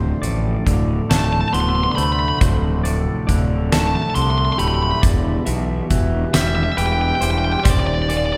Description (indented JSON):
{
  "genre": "post-rock",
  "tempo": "46 BPM (dotted quarters)",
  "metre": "6/8",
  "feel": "straight",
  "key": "D dorian",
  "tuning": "A4 = 441 Hz",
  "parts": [
    { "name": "hollow soft pad", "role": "sustained chords", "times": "0.0-8.4 s", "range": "B2 to E5", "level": "-31 LUFS", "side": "equal", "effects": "chorus" },
    { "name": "semi-hollow electric guitar", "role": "arpeggios", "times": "0.0-8.4 s", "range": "B3 to E5", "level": "-33 LUFS", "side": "equal", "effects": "none" },
    { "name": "twangy electric guitar", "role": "arpeggios", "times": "0.0-8.4 s", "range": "D2 to A3", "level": "-28 LUFS", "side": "equal", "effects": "none" },
    { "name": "fuzz fingered electric bass", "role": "bass", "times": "0.0-8.3 s", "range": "D1 to D2", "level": "-23 LUFS", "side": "equal", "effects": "overdrive" },
    { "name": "huge arena drum kit", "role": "drums", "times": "0.2-8.3 s", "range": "hi-hat, kick drum, snare drum", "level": "-23 LUFS", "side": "equal", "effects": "none" },
    { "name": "dark smooth lead guitar", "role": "melody", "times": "1.1-8.4 s", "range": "D5 to C6", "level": "-24 LUFS", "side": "equal", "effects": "overdrive" }
  ],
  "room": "wet concert hall reverb, RT60 2.3 s",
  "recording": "recorded in a church or concert hall",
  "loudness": "-18 LUFS",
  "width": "mono",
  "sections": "0.0-8.4 A section",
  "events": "none",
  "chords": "0.0 Dm7; 5.0 Em; 7.7 Ebmaj7"
}